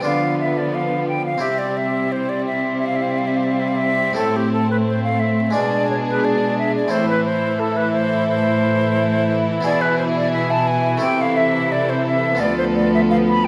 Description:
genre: classical, baroque-style concerto movement with solo episodes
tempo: 88 BPM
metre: 4/4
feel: straight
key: A minor from 9.7 s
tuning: A4 = 440 Hz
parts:
  - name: rich chamber violin section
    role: melody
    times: 0.0-13.5 s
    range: D4 to A4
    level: -35 LUFS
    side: equal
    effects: none
  - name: silver concert flute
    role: melody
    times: 0.0-13.5 s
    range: G4 to B5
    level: -24 LUFS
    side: equal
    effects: none
  - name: rich chamber violin section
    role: second line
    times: 0.0-13.5 s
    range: B3 to E4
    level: -26 LUFS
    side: equal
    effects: none
  - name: harpsichord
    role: accompaniment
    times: 0.0-13.5 s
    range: D2 to A4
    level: -31 LUFS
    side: equal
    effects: none
  - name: warm chamber cello section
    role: bass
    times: 0.0-13.5 s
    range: D2 to D3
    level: -25 LUFS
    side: equal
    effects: none
  - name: rich chamber viola section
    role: accompaniment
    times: 0.1-13.5 s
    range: E3 to A3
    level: -27 LUFS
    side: equal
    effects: none
room: moderate recital hall reverb, RT60 1.4 s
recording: vinyl crackle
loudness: -19 LUFS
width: mono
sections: 0.0-13.5 A section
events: none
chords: 0.1 Bdim/D; 1.4 C; 4.2 Am; 5.5 G#dim/B; 6.9 Am; 9.7 E/B; 11.0 Am/C; 12.4 Bm7b5/D

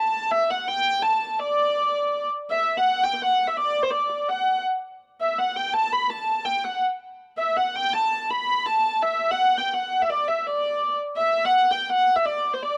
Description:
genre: medieval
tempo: 166 BPM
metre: 3/4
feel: straight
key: D mixolydian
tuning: A4 = 440 Hz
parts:
  - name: dark hurdy-gurdy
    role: solo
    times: 0.0-12.8 s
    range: C5 to B5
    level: -23 LUFS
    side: equal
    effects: none
room: small room ambience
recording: dry, close 1970s-style studio recording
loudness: -23 LUFS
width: mono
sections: 0.0-2.5 A section; 2.5-11.2 B section; 11.2-12.8 B section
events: none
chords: none

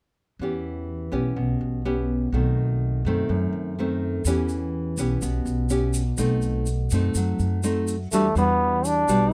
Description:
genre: bossa nova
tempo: 124 BPM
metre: 4/4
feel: straight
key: E dorian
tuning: A4 = 440 Hz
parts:
  - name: nylon-string guitar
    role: accompaniment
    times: 0.4-9.3 s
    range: F#2 to G4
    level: -28 LUFS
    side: equal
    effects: none
  - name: upright bass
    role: bass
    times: 0.4-9.3 s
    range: B1 to F#2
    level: -28 LUFS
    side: equal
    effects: none
  - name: tube shaker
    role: percussion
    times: 4.3-9.3 s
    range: none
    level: -38 LUFS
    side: equal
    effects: none
  - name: bright trombone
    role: melody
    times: 8.1-9.3 s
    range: A3 to D4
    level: -23 LUFS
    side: equal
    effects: none
room: little or no reverb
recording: close, detailed microphones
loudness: -24 LUFS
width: mono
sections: 0.4-8.1 A section; 8.1-9.3 B section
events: none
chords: 0.4 Em6; 2.3 B7b9; 4.3 Em6; 6.2 B7b9; 8.1 Em9

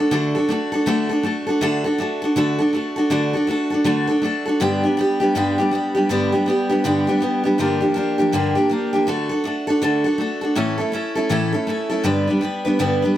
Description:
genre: rock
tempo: 161 BPM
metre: 4/4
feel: swing 62% on 8ths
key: D major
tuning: A4 = 440 Hz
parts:
  - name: picked steel-string acoustic guitar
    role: solo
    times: 0.0-13.2 s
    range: G2 to B4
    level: -17 LUFS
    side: equal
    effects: none
room: moderate studio reverb, RT60 0.8 s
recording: none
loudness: -17 LUFS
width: side -12 dB against mid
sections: 0.0-13.2 A section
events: none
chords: 0.0 D; 4.6 G; 7.6 Gm7; 9.1 D; 10.6 A; 12.0 G

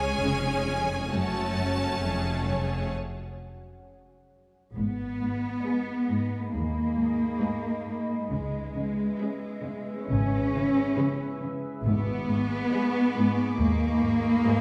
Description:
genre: cinematic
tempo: 68 BPM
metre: 4/4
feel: straight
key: F# harmonic minor, G# minor from 4.8 s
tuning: A4 = 440 Hz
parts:
  - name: warm symphonic violin section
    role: melody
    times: 0.0-14.6 s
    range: D#5 to A5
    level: -36 LUFS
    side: equal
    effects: none
  - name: rich symphonic violin section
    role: second line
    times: 0.0-14.6 s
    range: F#4 to C#5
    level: -38 LUFS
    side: equal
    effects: none
  - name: rich symphonic viola section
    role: accompaniment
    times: 0.0-14.6 s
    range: G#3 to G#4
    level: -37 LUFS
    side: equal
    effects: none
  - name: deep dark ambient pad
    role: sustained chords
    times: 0.0-14.6 s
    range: F#4 to B5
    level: -41 LUFS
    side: equal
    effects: chorus, built-in reverb
  - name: warm symphonic cello section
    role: riff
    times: 0.0-14.6 s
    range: F#2 to C#4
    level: -34 LUFS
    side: equal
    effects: none
  - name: rich symphonic double bass section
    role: bass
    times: 0.0-14.3 s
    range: E#1 to D#2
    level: -35 LUFS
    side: equal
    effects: none
  - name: warm symphonic cello section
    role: bass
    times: 0.0-14.6 s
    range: C#2 to C#4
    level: -30 LUFS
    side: equal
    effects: none
  - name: concert harp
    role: texture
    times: 6.1-14.0 s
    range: G#5 to A#6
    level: -46 LUFS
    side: equal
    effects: none
  - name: timpani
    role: percussion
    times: 11.9-13.1 s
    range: G#2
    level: -38 LUFS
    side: equal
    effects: none
  - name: warm symphonic violin section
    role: texture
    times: 11.9-14.6 s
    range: B5 to D6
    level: -44 LUFS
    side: equal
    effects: none
room: moderate scoring stage reverb, RT60 1.9 s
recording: none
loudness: -28 LUFS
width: mono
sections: 0.0-4.8 A section; 4.8-14.6 B section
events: break 2.9-4.8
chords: 0.0 C#; 1.1 F#m; 2.9 N.C.; 4.8 G#m; 8.3 C#m7; 11.9 G#m

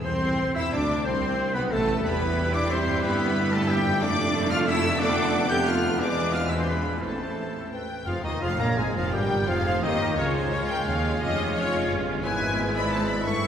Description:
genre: classical, dramatic, fast romantic movement for symphony orchestra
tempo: 169-185 BPM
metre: 3/4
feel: rubato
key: A minor, F minor from 8.1 s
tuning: A4 = 443 Hz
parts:
  - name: clear symphonic violin section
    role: melody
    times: 0.0-13.5 s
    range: C5 to G6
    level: -31 LUFS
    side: left 3 dB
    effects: none
  - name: mellow hollow silver concert flute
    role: second line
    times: 0.0-13.5 s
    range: Eb4 to G5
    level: -35 LUFS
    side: left 1 dB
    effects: none
  - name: warm oboe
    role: second line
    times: 0.0-13.5 s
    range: G4 to Bb5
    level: -33 LUFS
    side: right 1 dB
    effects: none
  - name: rich symphonic viola section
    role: accompaniment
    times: 0.0-13.5 s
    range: D3 to F4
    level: -33 LUFS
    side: right 1 dB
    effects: none
  - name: warm bassoon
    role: accompaniment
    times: 0.0-13.5 s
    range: Eb3 to E4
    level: -34 LUFS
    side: right 2 dB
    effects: none
  - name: concert harp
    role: arpeggios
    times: 0.0-13.5 s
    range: E2 to C6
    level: -34 LUFS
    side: left 4 dB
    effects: none
  - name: clear symphonic double bass section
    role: bass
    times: 0.0-13.5 s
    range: F1 to G2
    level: -32 LUFS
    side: right 2 dB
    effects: none
  - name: rich symphonic cello section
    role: bass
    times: 0.0-13.5 s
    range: Db2 to G4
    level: -31 LUFS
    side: right 2 dB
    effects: none
  - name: warm tuba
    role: bass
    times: 0.0-13.5 s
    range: E1 to Eb2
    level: -32 LUFS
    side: right 2 dB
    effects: none
  - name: clear symphonic violin section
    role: second line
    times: 0.1-13.5 s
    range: A3 to C#6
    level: -35 LUFS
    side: left 2 dB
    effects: none
  - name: warm clarinet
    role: second line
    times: 0.1-13.5 s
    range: Eb4 to E5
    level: -35 LUFS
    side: equal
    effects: none
  - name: mellow French horn section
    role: sustained chords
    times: 0.1-13.5 s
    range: Eb3 to F4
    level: -32 LUFS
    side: left 1 dB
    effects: none
room: wet church reverb, RT60 2.6 s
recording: recorded in a church or concert hall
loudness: -22 LUFS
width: side -8 dB against mid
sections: 0.1-8.1 A section; 8.1-13.5 B section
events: none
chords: 0.1 Am; 2.1 Em; 3.0 Em/G; 4.0 Dm/F; 5.0 Bm7b5/F; 6.0 E7; 6.7 E7b9; 7.0 Am; 8.1 Fm; 10.2 Db; 11.2 Db/F; 12.2 E/G#

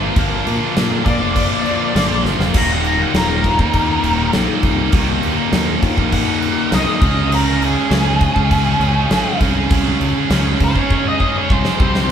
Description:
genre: classic rock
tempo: 101 BPM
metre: 4/4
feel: straight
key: Eb major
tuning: A4 = 440 Hz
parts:
  - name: overdriven electric guitar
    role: riff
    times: 0.0-12.1 s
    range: Eb2 to Db4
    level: -20 LUFS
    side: left 3 dB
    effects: none
  - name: tight distorted guitar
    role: riff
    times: 0.0-12.1 s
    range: Eb2 to Ab4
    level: -21 LUFS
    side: right 8 dB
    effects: distortion
  - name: growling fingered electric bass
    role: bass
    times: 0.0-12.1 s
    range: Eb1 to Bb2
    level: -20 LUFS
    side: equal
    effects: overdrive
  - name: huge arena drum kit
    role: drums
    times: 0.2-12.1 s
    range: crash cymbal, kick drum, snare drum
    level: -19 LUFS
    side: equal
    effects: none
  - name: octave-fuzz lead guitar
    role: melody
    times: 1.1-12.1 s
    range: Ab4 to Bb5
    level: -21 LUFS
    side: left 1 dB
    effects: distortion
room: moderate large studio reverb, RT60 1.2 s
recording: band playing live in one room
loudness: -14 LUFS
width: side -8 dB against mid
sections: 0.0-2.5 A section; 2.5-12.1 B section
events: drum fill 2.3, 10.9-12.1; lead electric guitar solo 2.5-12.1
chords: 0.0 Bb6; 2.5 Eb; 7.0 Dbsus2

